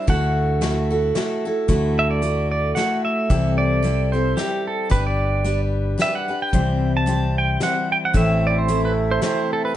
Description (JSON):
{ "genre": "acoustic folk duo or small band", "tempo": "112 BPM", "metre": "3/4", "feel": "swing 55% on 8ths", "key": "D mixolydian", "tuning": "A4 = 440 Hz", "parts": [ { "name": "pedal steel guitar", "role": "second line", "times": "0.0-9.7 s", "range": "G4 to A5", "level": "-23 LUFS", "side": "right 2 dB", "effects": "none" }, { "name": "picked steel-string acoustic guitar", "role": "accompaniment", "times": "0.0-9.8 s", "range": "A2 to C5", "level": "-23 LUFS", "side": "left 1 dB", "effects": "none" }, { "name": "fingered electric bass", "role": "bass", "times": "0.1-9.2 s", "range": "G1 to D2", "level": "-22 LUFS", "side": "equal", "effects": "none" }, { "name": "loose indie drum kit", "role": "drums", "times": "0.1-9.4 s", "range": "hi-hat, kick drum, ride cymbal, snare drum", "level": "-24 LUFS", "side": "equal", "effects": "none" }, { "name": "hand-pumped harmonium", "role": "sustained chords", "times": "8.2-9.8 s", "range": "C3 to E4", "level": "-28 LUFS", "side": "right 3 dB", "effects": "none" } ], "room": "light reverb", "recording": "nothing above 10.3 kHz", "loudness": "-18 LUFS", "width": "side -12 dB against mid", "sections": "0.0-1.7 A section; 1.7-9.8 B section", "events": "pedal steel guitar solo 0.0-1.7, 1.7-9.8", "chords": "0.1 Dadd9; 3.3 C6; 4.9 G; 6.5 C; 8.1 Am" }